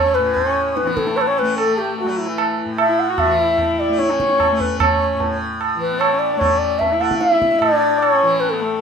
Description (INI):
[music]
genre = indian classical, Hindustani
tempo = 149 BPM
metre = 4/4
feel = straight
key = A raga khamaj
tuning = A4 = 444 Hz
[part]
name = breathy mellow bansuri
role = melody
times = 0.0-8.8 s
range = E4 to F#5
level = -17 LUFS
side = left 1 dB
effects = none
[part]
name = rich sarangi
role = second line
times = 0.0-8.8 s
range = E3 to F#4-20c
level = -24 LUFS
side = left 3 dB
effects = none
[part]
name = tanpura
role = drone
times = 0.0-8.8 s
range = A2 to A3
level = -26 LUFS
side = equal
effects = none
[part]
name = tabla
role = percussion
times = 0.4-8.6 s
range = none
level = -22 LUFS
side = right 4 dB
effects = none
[sound]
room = moderate studio ambience, RT60 0.5 s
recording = minimal, uncompressed stereo recording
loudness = -15 LUFS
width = side -6 dB against mid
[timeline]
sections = 0.0-8.8 A section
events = none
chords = none